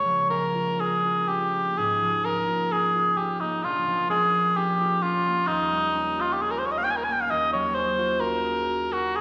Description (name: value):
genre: classical, impressionist duo for cor anglais and harp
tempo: 59-67 BPM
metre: 4/4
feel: rubato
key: Db lydian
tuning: A4 = 444 Hz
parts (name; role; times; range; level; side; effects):
- warm cor anglais; melody; 0.0-9.2 s; Eb4 to Ab5; -25 LUFS; equal; none
- concert harp; accompaniment; 0.0-9.2 s; Bb1 to Ab4; -33 LUFS; equal; none
room: wet concert hall reverb, RT60 1.9 s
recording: none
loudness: -25 LUFS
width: mono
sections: 0.0-9.2 A section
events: none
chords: 0.0 Db6; 3.6 Bbm; 5.5 Eb9; 7.3 Ebm11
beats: 0.80 1.77 2.72 | 3.64 4.57 5.48 6.39 | 7.29 8.20 9.16